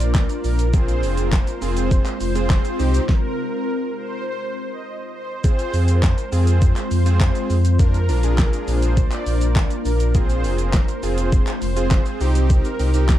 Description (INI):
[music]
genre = dance-pop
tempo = 102 BPM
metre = 4/4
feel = straight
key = F dorian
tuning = A4 = 440 Hz
[part]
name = ethereal airy pad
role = sustained chords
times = 0.0-13.2 s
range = C3 to G4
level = -28 LUFS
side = left 2 dB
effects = ensemble chorus, built-in reverb, sidechain pumping
[part]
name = sub bass with octave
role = bass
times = 0.0-13.2 s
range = F1 to F2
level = -19 LUFS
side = equal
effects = sidechain pumping
[part]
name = pop drum kit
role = drums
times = 0.0-13.2 s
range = handclaps, hi-hat, kick drum, shaker, snare drum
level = -19 LUFS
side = equal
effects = overdrive
[part]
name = supersaw pad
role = melody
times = 0.4-13.1 s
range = Bb4 to Eb5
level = -28 LUFS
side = right 1 dB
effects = analog delay
[part]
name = big bright polysynth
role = accompaniment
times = 0.7-13.2 s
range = C4 to Bb4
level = -27 LUFS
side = right 3 dB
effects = sidechain pumping
[sound]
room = little or no reverb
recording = dark, warm production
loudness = -17 LUFS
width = side -13 dB against mid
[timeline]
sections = 0.0-5.4 A section; 5.4-13.2 A section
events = drop 0.0-5.4, 5.4-13.2; stop 3.1-5.4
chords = 0.0 Bb; 0.7 Fm; 2.8 Cm; 5.4 Fm; 7.8 Bb; 10.1 Fm; 12.2 Cm